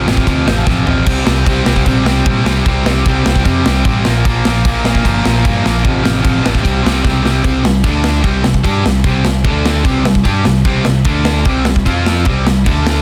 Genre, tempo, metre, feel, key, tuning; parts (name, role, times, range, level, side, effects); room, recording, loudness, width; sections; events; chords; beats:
punk rock; 150 BPM; 4/4; straight; A4 = 440 Hz
cranked stack guitar; riff; 0.0-13.0 s; F2 to G4; -20 LUFS; equal; overdrive
sludgy distorted guitar; riff; 0.0-13.0 s; F2 to G4; -20 LUFS; equal; overdrive
overdriven picked electric bass; bass; 0.1-13.0 s; G1 to Bb2; -19 LUFS; equal
big rock drum kit; drums; 0.1-13.0 s; crash cymbal, kick drum, snare drum, toms; -18 LUFS; equal
little or no reverb; dense, heavily limited modern master; -13 LUFS; mono
0.0-7.4 A section; 7.4-13.0 B section
drum fill 0.7-1.1, 7.0-7.4
0.0 F/A; 1.1 C5; 4.1 Bb5; 5.8 F/A; 6.6 C5; 7.8 D5; 8.2 C5; 9.4 D5; 9.8 C5; 11.1 D5; 11.5 C5; 11.9 F5; 12.3 C5
0.26 0.66 | 1.06 1.46 1.86 2.26 | 2.66 3.06 3.45 3.85 | 4.25 4.65 5.05 5.45 | 5.85 6.25 6.64 7.04 | 7.44 7.84 8.24 8.64 | 9.05 9.45 9.85 10.25 | 10.65 11.05 11.46 11.86 | 12.26 12.67